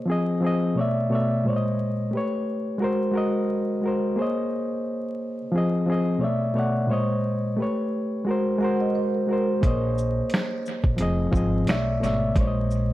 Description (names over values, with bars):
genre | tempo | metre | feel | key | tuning
lo-fi hip hop | 88 BPM | 4/4 | swing 57% on 16ths | Bb minor | A4 = 440 Hz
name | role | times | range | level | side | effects
reed electric piano | accompaniment | 0.0-12.9 s | Bb2 to F#5 | -23 LUFS | equal | overdrive, cassette tape
vibraphone with soft mallets | second line | 8.6-9.6 s | Bb4 to Gb5 | -31 LUFS | right 5 dB | analog delay
upright bass | bass | 9.6-12.9 s | F1 to B1 | -26 LUFS | equal | none
dusty soul sampler-style drum kit | drums | 9.6-12.9 s | finger snaps, hi-hat, kick drum, shaker, snare drum | -25 LUFS | equal | analog delay
room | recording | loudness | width
moderate plate reverb, RT60 1.5 s | echo-heavy mix, vinyl crackle | -22 LUFS | side -15 dB against mid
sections
0.0-12.9 A section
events
none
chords
0.1 Fm7; 0.8 Bm11; 1.4 Bbm11; 2.1 A9; 2.8 Ab9; 4.2 Bbm11; 5.5 Fm7; 6.2 Bm11; 6.9 Bbm11; 7.6 A9; 8.3 Ab9; 9.6 Bbm11; 11.0 Fm7; 11.7 Bm11; 12.4 Bbm11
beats
0.08 0.77 | 1.45 2.13 2.81 3.49 | 4.17 4.86 5.54 6.22 | 6.90 7.58 8.27 8.95 | 9.63 10.31 10.99 11.67 | 12.36